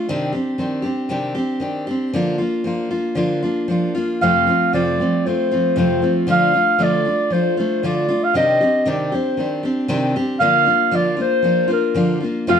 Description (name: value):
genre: acoustic folk duo or small band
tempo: 116 BPM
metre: 4/4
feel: straight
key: F mixolydian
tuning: A4 = 439 Hz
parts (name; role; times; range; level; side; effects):
- picked steel-string acoustic guitar; accompaniment; 0.0-12.6 s; F2 to G4; -19 LUFS; equal; none
- dark clarinet; melody; 4.2-12.6 s; Bb4 to F5; -17 LUFS; equal; slapback echo
- bright upright piano; arpeggios; 12.5-12.6 s; F4; -18 LUFS; equal; none
room: moderate studio reverb, RT60 0.8 s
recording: dark, warm production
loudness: -16 LUFS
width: side -7 dB against mid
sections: 0.0-4.2 A section; 4.2-12.6 B section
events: none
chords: 0.1 Cmadd9; 2.1 Bb/D; 4.2 F; 6.3 Dm; 8.4 Cmadd9; 10.4 Bb/D